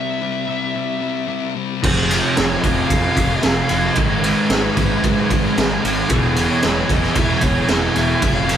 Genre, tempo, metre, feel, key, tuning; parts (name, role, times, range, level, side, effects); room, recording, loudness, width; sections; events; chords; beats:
quiet-loud alternative rock; 113 BPM; 4/4; straight; A4 = 440 Hz
dark smooth lead guitar; melody; 0.0-8.6 s; Ab4 to F5; -26 LUFS; equal; overdrive
warm studio string section; sustained chords; 0.0-8.6 s; C3 to Cb5; -35 LUFS; left 2 dB
thick fuzz guitar; riff; 0.0-8.6 s; E2 to C4; -24 LUFS; left 9 dB; distortion
cranked stack guitar; riff; 1.8-8.6 s; E2 to Ab3; -25 LUFS; equal; overdrive
fuzz guitar; riff; 1.8-8.6 s; E2 to Ab3; -23 LUFS; right 7 dB; distortion
growling picked electric bass; bass; 1.8-8.6 s; E1 to Ab2; -25 LUFS; equal; overdrive
raw garage drum kit; drums; 1.8-8.6 s; crash cymbal, kick drum, ride cymbal, snare drum; -17 LUFS; right 1 dB
moderate stone room reverb, RT60 1.1 s; band playing live in one room; -15 LUFS; side -9 dB against mid
0.0-8.6 A section
0.0 C; 1.8 Fm; 4.0 Abm; 6.1 E
0.24 0.77 1.30 | 1.84 2.37 2.90 3.44 | 3.97 4.50 5.03 5.57 | 6.10 6.63 7.16 7.70 | 8.23